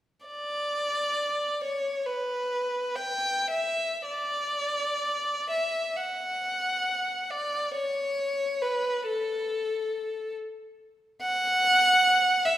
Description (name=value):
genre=classical, free, expressive piece for unaccompanied violin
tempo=45-73 BPM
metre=4/4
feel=rubato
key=unclear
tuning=A4 = 440 Hz
part: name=rich violin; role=solo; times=0.3-12.6 s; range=A4 to G5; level=-25 LUFS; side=equal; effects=none
room=wet recital hall reverb, RT60 1.7 s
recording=recorded in a church or concert hall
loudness=-25 LUFS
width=side -13 dB against mid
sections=0.3-4.1 A section; 4.1-12.6 B section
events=none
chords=none